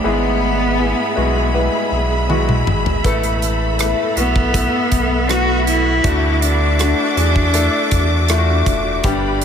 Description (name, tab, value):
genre	pop ballad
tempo	80 BPM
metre	4/4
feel	straight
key	unclear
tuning	A4 = 439 Hz
part	rich cello	melody	0.0-8.7 s	B3 to F#4	-20 LUFS	equal	tape echo
part	clear concert grand piano	accompaniment	0.0-9.4 s	G2 to B4	-20 LUFS	left 3 dB	lush chorus
part	clear studio string section	sustained chords	0.0-9.4 s	F#4 to D6	-23 LUFS	equal	none
part	sub bass with octave	bass	0.0-9.4 s	E1 to E2	-19 LUFS	equal	none
part	modern studio drum kit	drums	2.3-9.4 s	hi-hat, kick drum, rim click, toms	-22 LUFS	right 1 dB	none
room	moderate huge ambient reverb, RT60 8.6 s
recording	dreamy mix soaked in reverb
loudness	-14 LUFS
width	side -8 dB against mid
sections	0.0-9.4 A section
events	drum fill 2.3-3.0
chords	0.0 E/G#; 3.0 Asus2; 6.0 Dadd9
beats	| 0.04 0.79 1.54 2.29 | 3.04 3.79 4.54 5.29 | 6.04 6.79 7.54 8.29 | 9.04